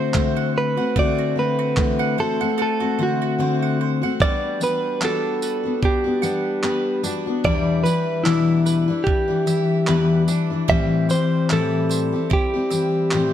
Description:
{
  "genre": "acoustic pop",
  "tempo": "74 BPM",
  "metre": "4/4",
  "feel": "swing 55% on 16ths",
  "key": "G major",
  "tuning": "A4 = 440 Hz",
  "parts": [
    { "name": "direct-recorded clean electric guitar", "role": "melody", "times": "0.0-13.3 s", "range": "E4 to E5", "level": "-23 LUFS", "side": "right 1 dB", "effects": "none" },
    { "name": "picked steel-string acoustic guitar", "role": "accompaniment", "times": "0.0-13.3 s", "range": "E2 to G4", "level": "-21 LUFS", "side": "left 4 dB", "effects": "none" },
    { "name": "mandolin", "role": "arpeggios", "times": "0.0-13.3 s", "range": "G3 to F#5", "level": "-30 LUFS", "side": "right 8 dB", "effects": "none" },
    { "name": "dusty soul sampler-style drum kit", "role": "drums", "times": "0.1-13.3 s", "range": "handclaps, kick drum, tambourine", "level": "-24 LUFS", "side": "right 2 dB", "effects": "none" }
  ],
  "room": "light reverb",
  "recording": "none",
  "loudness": "-18 LUFS",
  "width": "side -10 dB against mid",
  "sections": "0.0-4.2 A section; 4.2-13.3 B section",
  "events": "none",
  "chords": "0.0 D7; 4.2 Gmaj7; 7.4 Em7; 10.7 Am7"
}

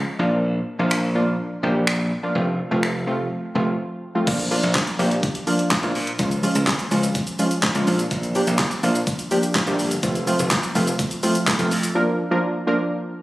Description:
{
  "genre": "dance-pop",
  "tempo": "125 BPM",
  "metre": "4/4",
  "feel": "straight",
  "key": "Bb major",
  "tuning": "A4 = 440 Hz",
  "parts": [
    { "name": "glassy wavetable pluck", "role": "accompaniment", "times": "0.0-13.1 s", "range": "F3 to Bb4", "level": "-22 LUFS", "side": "equal", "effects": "chorus, sidechain pumping" },
    { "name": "glassy slap bass", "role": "bass", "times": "0.0-11.9 s", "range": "F1 to Bb2", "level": "-23 LUFS", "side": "equal", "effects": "sidechain pumping" },
    { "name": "pop drum kit", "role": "drums", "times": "0.9-11.9 s", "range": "crash cymbal, finger snaps, handclaps, hi-hat, kick drum, shaker, snare drum", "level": "-23 LUFS", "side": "equal", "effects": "overdrive" }
  ],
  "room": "light reverb",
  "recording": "recorded on a phone in the room, studio reverb, compression",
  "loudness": "-19 LUFS",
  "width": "side -17 dB against mid",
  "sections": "0.0-4.3 A section; 4.3-12.0 B section; 12.0-13.2 C section",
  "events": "none",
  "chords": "0.2 Bb; 2.4 F; 4.3 Bb; 6.2 Db; 7.9 Bb; 10.0 F; 12.0 Bb"
}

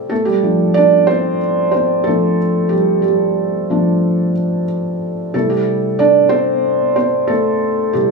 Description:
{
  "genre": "pop",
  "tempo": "92 BPM",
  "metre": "4/4",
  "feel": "straight",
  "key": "unclear",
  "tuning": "A4 = 441 Hz",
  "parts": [
    { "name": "felt-muted upright piano", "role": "solo", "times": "0.0-8.1 s", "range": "C3 to D5", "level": "-13 LUFS", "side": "right 1 dB", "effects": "none" }
  ],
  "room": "moderate studio ambience, RT60 0.5 s",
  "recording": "studio ambience",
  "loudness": "-13 LUFS",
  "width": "side -3 dB against mid",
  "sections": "0.0-8.1 A section",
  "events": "felt piano solo 0.0-8.1",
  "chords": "0.1 F6; 5.3 C"
}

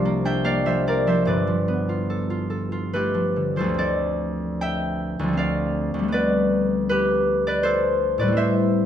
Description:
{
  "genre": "classical, solo harp piece",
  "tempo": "69-83 BPM",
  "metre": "3/4",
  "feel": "rubato",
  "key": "unclear",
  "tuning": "A4 = 441 Hz",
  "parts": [
    { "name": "concert harp", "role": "solo", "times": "0.0-8.9 s", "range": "G1 to G5", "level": "-20 LUFS", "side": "equal", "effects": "none" }
  ],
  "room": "moderate large studio reverb, RT60 1.4 s",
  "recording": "minimal, uncompressed stereo recording",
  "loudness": "-20 LUFS",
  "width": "side -9 dB against mid",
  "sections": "0.0-3.8 A section; 3.8-8.9 B section",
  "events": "none",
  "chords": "0.0 C9sus4; 1.3 G9; 3.8 Dm9; 6.1 G13/D"
}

